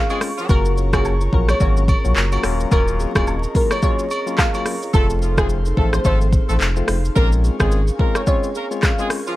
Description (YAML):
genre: afrobeats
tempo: 108 BPM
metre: 4/4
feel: swing 58% on 16ths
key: Bb minor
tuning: A4 = 438 Hz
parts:
  - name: glassy wavetable pluck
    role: melody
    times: 0.0-9.2 s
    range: Ab4 to F5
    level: -25 LUFS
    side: equal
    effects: chorus
  - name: airy breathy pad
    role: sustained chords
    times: 0.0-9.4 s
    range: A4 to Db6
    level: -33 LUFS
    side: equal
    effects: chorus
  - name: kalimba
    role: riff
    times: 0.0-9.3 s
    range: C4 to Db5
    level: -29 LUFS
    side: right 2 dB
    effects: none
  - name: warm horn section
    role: second line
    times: 0.1-0.5, 4.9-9.3 s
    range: F3 to Bb4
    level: -28 LUFS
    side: right 2 dB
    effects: none
  - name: barky tine electric piano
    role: accompaniment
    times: 0.1-9.2 s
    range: F3 to Gb4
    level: -26 LUFS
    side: left 7 dB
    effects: none
  - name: afro-pop drum kit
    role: drums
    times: 0.1-9.4 s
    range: handclaps, hi-hat, kick drum, rim click, shaker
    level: -19 LUFS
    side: equal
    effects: none
  - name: agogo bells and woodblock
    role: percussion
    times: 0.1-4.7 s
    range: none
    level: -28 LUFS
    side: right 2 dB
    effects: none
  - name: sub bass with octave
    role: bass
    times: 0.5-7.9 s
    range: Eb1 to Bb1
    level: -19 LUFS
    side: equal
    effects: none
room: little or no reverb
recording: dark, warm production, vinyl crackle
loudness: -16 LUFS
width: side -16 dB against mid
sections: 0.0-4.9 A section; 4.9-9.4 A section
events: none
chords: 0.5 Gb; 2.4 Ebm7; 4.9 F; 7.2 Bbm7